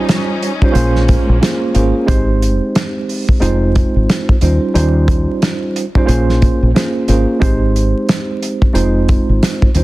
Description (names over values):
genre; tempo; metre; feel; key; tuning
hip hop, boom-bap hip-hop; 90 BPM; 4/4; swing 62% on 16ths; Bb dorian; A4 = 440 Hz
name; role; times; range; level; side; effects
tine electric piano; accompaniment; 0.0-9.8 s; G3 to C5; -16 LUFS; right 2 dB; medium stereo tremolo, cassette tape, high-pass filter, low-pass filter
warm studio string section; sustained chords; 0.0-2.1 s; G3 to Eb4; -24 LUFS; left 1 dB; high-pass filter, low-pass filter
warm soul drum kit; drums; 0.1-9.8 s; hi-hat, kick drum, rim click, snare drum; -15 LUFS; equal; none
deep dub fingered electric bass; bass; 0.8-9.8 s; F1 to Eb2; -14 LUFS; equal; none
room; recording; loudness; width
small room ambience; dense, heavily limited modern master, vinyl crackle, faint mains hum; -12 LUFS; side -18 dB against mid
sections
0.0-2.1 A section; 2.1-9.8 B section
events
none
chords
0.0 Eb13; 0.7 Bbm9; 2.1 Abmaj7; 3.4 Fm7; 4.4 Eb13; 6.1 Bbm9; 7.4 Abmaj7; 8.7 Fm7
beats
0.08 0.75 1.41 | 2.08 2.75 3.41 4.08 | 4.75 5.41 6.08 6.75 | 7.41 8.08 8.75 9.41